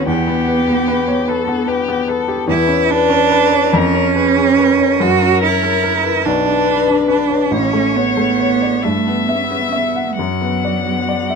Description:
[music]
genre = classical, slow romantic movement for piano trio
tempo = 44-50 BPM (dotted quarters)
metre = 6/8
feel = rubato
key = B minor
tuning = A4 = 440 Hz
[part]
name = rich violin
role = melody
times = 0.0-11.4 s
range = G4 to F#5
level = -20 LUFS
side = left 9 dB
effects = none
[part]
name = clear cello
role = second line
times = 0.0-11.4 s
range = F#3 to F#4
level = -16 LUFS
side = right 8 dB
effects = none
[part]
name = warm baby grand piano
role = accompaniment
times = 0.0-11.4 s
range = A1 to F#5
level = -17 LUFS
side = left 3 dB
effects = none
[sound]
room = light reverb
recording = close, detailed microphones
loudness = -13 LUFS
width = side -5 dB against mid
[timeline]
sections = 0.0-11.4 A section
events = none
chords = 0.1 Em; 2.5 C#m7/E; 3.8 C#7/E#; 5.0 F#7; 6.3 Bm; 7.5 Aadd9; 8.8 Em/G; 10.2 Bm/F#

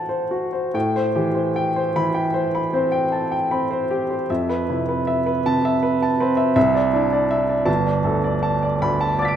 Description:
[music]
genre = classical, impressionist solo piano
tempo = 46-54 BPM (dotted quarters)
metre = 9/8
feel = rubato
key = A minor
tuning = A4 = 439 Hz
[part]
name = clear baby grand piano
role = solo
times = 0.0-9.4 s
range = G1 to D7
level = -18 LUFS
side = equal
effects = none
[sound]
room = moderate scoring stage reverb, RT60 1.7 s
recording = none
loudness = -18 LUFS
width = side -9 dB against mid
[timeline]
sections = 0.7-9.4 A section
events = none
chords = 0.0 Am6; 0.7 Am9; 4.3 Fmaj7#11; 6.6 Cadd9; 7.7 Gadd9

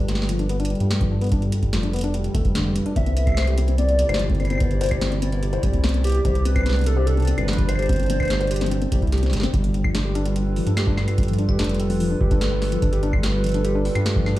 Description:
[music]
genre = IDM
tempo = 146 BPM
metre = 4/4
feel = straight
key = unclear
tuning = A4 = 440 Hz
[part]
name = warbly tape-like pad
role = sustained chords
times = 0.0-14.4 s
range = B2 to D5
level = -29 LUFS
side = right 2 dB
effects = chorus, built-in reverb, vintage 12-bit sampler grit
[part]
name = felt-muted upright piano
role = arpeggios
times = 0.0-14.4 s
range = G2 to C5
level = -27 LUFS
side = left 3 dB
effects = ping-pong delay
[part]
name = round analog bass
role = bass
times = 0.0-14.4 s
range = F1 to G2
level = -22 LUFS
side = equal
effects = tube saturation
[part]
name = booming analog drum machine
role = drums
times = 0.1-14.4 s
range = claves, hi-hat, snare drum, toms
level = -29 LUFS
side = left 1 dB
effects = none
[part]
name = electronic kick drum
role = drums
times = 1.0-14.2 s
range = none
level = -23 LUFS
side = equal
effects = none
[part]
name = warbly nostalgic lead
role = melody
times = 3.0-9.1 s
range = G4 to E5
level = -27 LUFS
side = equal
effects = lush chorus, ping-pong delay
[sound]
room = light reverb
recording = played on a big sound system in a bare room, large studio reverb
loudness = -19 LUFS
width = side -16 dB against mid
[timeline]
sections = 0.0-9.5 A section; 9.5-14.4 B section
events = kick drops out 9.1-9.5; drum fill 9.1-9.5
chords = 0.0 G9; 3.0 Cmaj9; 9.5 G9

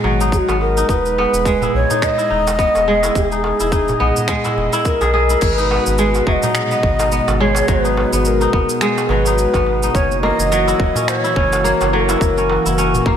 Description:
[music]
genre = organic downtempo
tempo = 106 BPM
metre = 4/4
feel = swing 57% on 16ths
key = G# minor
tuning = A4 = 439 Hz
[part]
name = warm analog pad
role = sustained chords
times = 0.0-13.2 s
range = B2 to D#5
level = -23 LUFS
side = left 1 dB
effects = chorus, sidechain pumping
[part]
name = kora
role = arpeggios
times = 0.0-13.2 s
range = F#3 to G#4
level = -19 LUFS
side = left 1 dB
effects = digital delay, slapback echo
[part]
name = round analog bass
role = bass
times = 0.0-13.2 s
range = E1 to B1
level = -21 LUFS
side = equal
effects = sidechain pumping
[part]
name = darbuka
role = percussion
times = 0.0-13.0 s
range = none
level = -27 LUFS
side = right 2 dB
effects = none
[part]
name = organic electronic drum kit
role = drums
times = 0.2-13.0 s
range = crash cymbal, finger snaps, shaker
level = -26 LUFS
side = right 2 dB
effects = none
[part]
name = breathy mellow Native American-style cedar flute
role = melody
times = 0.3-13.1 s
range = F#4 to E5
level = -19 LUFS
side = equal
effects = digital delay
[part]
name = electronic kick drum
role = drums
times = 0.3-13.2 s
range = none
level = -19 LUFS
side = equal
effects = none
[sound]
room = wet lush hall reverb, RT60 1.9 s, digital ambience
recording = big arena sound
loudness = -14 LUFS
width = side -9 dB against mid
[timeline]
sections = 0.0-5.4 A section; 5.4-13.2 B section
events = none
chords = 0.0 G#m7; 0.9 Emaj7; 5.4 G#m7; 9.9 F#7

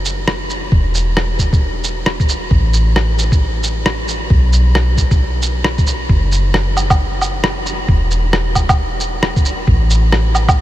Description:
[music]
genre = future garage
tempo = 134 BPM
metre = 4/4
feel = swing 61% on 16ths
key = F# minor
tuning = A4 = 440 Hz
[part]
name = soft 808-style bass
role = bass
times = 0.0-10.6 s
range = E1 to B1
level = -16 LUFS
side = equal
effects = tube saturation, sidechain pumping
[part]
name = electronic shaker, rim click and woodblock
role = drums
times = 0.1-10.6 s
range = none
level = -18 LUFS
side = equal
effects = none
[part]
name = electronic kick drum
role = drums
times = 0.7-10.6 s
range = none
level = -13 LUFS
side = equal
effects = none
[sound]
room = light reverb, digital ambience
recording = none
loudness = -13 LUFS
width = side -14 dB against mid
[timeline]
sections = 0.0-10.6 A section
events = none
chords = none

